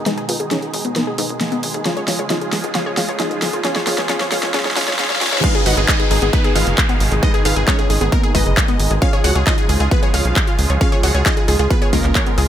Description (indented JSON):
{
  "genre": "uplifting trance",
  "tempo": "134 BPM",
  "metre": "4/4",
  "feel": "straight",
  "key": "G# dorian",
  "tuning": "A4 = 440 Hz",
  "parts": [
    { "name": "filtered supersaw swell", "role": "sustained chords", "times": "0.0-12.5 s", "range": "B2 to G#4", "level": "-26 LUFS", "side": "right 2 dB", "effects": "sidechain pumping" },
    { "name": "tight sequencer bass", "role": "bass", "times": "0.0-12.5 s", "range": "F#1 to G#2", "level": "-20 LUFS", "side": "equal", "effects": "sidechain pumping, high-pass filter" },
    { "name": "riser, reverse cymbal and downlifter", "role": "sound effects", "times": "3.2-9.0 s", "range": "none", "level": "-28 LUFS", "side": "left 1 dB", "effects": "none" },
    { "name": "wide unison pluck", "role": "melody", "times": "0.1-12.5 s", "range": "A#3 to F#5", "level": "-22 LUFS", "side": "equal", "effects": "vintage 12-bit sampler grit, sidechain pumping, ping-pong delay" },
    { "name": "wide unison pluck", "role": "arpeggios", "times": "0.1-12.5 s", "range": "G#3 to C#5", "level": "-26 LUFS", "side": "left 4 dB", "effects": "sidechain pumping, ping-pong delay" },
    { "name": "big-room dance drum kit", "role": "drums", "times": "0.1-12.5 s", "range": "crash cymbal, handclaps, hi-hat, snare drum", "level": "-21 LUFS", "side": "equal", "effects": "overdrive" },
    { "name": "plucky unison lead", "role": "second line", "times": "5.4-12.5 s", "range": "G#4 to F#5", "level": "-25 LUFS", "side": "right 1 dB", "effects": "phaser, sidechain pumping, ping-pong delay" },
    { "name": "electronic kick drum", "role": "drums", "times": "5.4-12.2 s", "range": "none", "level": "-17 LUFS", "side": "equal", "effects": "overdrive" }
  ],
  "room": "little or no reverb",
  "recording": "high-pass filter",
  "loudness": "-14 LUFS",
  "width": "side -10 dB against mid",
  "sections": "0.0-5.4 A section; 5.4-12.5 B section",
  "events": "build-up 0.0-5.4; drum fill 0.0-5.4; filter sweep on synth pluck 0.0-5.4; filter sweep on synth arpeggio sound 0.0-5.4; filter sweep 0.0-5.4; reverse cymbal 4.5-5.4; drop 5.4-12.5",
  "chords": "0.0 G#m; 1.9 C#; 5.4 G#m; 9.0 C#"
}